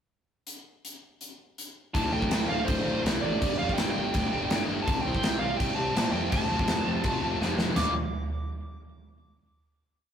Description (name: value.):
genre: punk rock.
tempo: 165 BPM.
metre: 4/4.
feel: straight.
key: D minor.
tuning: A4 = 440 Hz.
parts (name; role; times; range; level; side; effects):
big rock drum kit; drums; 0.5-7.9 s; crash cymbal, hi-hat, kick drum, snare drum, toms; -29 LUFS; equal; none.
smooth overdriven lead guitar; melody; 1.9-7.9 s; C5 to D6; -32 LUFS; right 2 dB; digital delay.
biting overdriven guitar; riff; 1.9-7.9 s; D2 to F4; -31 LUFS; left 1 dB; none.
fuzz picked electric bass; bass; 1.9-7.9 s; D1 to Bb2; -33 LUFS; left 1 dB; overdrive.
room: light reverb.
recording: rough rehearsal-room recording, warm saturation.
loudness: -25 LUFS.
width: side -8 dB against mid.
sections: 0.5-1.9 pickup bar; 1.9-7.8 riff; 7.8-9.2 final chord.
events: drum fill 7.4-7.8.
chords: 0.5 N.C.; 1.9 D5; 3.4 G5; 4.9 C5; 6.3 F; 7.8 Dm.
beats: | 0.47 0.84 1.21 1.58 | 1.94 2.31 2.68 3.05 | 3.41 3.78 4.14 4.51 | 4.87 5.24 5.60 5.96 | 6.32 6.69 7.05 7.41 | 7.77.